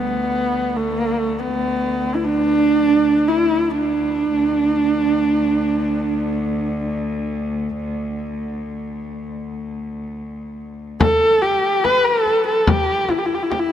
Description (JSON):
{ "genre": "mongolian traditional, Mongolian folk", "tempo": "72 BPM", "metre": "4/4", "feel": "straight", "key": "D zhi mode", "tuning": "A4 = 444 Hz", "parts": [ { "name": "dark horsehead fiddle", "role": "melody", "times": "0.0-13.7 s", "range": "A3 to B4", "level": "-17 LUFS", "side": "right 1 dB", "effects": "none" }, { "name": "warm cello", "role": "drone", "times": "0.0-11.1 s", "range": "D2", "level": "-25 LUFS", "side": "left 1 dB", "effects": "none" }, { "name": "frame drum", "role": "percussion", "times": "11.0-13.7 s", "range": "none", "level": "-21 LUFS", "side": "left 2 dB", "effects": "none" } ], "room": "moderate huge ambient reverb, RT60 4.2 s", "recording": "dark, warm production", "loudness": "-17 LUFS", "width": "side -10 dB against mid", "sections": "0.0-11.0 A section; 11.0-13.7 B section", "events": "none", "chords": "none", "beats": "0.14 | 0.98 1.81 2.65 3.49 | 4.32 5.16 6.00 6.83 | 7.67 8.50 9.34 10.18 | 11.01 11.85 12.68 13.52" }